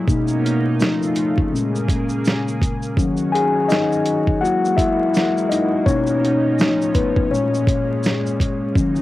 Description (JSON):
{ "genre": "lo-fi hip hop", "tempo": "83 BPM", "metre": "4/4", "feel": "swing 59% on 16ths", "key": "unclear", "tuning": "A4 = 438 Hz", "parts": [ { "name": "mellow tine electric piano", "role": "accompaniment", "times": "0.0-9.0 s", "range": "Bb2 to Ab5", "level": "-18 LUFS", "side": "left 2 dB", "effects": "low-pass filter, cassette tape" }, { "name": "lush unison pad", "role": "sustained chords", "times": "0.0-9.0 s", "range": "A2 to Ab4", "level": "-26 LUFS", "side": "right 2 dB", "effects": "chorus, low-pass filter, cassette tape" }, { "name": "dusty soul sampler-style drum kit", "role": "drums", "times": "0.1-9.0 s", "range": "hi-hat, kick drum, shaker, snare drum", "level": "-21 LUFS", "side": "right 1 dB", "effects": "cassette tape" } ], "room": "light reverb", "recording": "home recording on cassette, vinyl crackle", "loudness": "-16 LUFS", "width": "side -16 dB against mid", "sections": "0.0-9.0 A section", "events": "tine electric piano solo 0.0-9.0", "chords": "0.1 Bmaj9; 0.8 Faug7; 1.5 Bbm7; 3.0 Ebm7; 4.4 Gb9; 5.9 Bmaj9; 6.6 Faug7; 7.3 Bbm7" }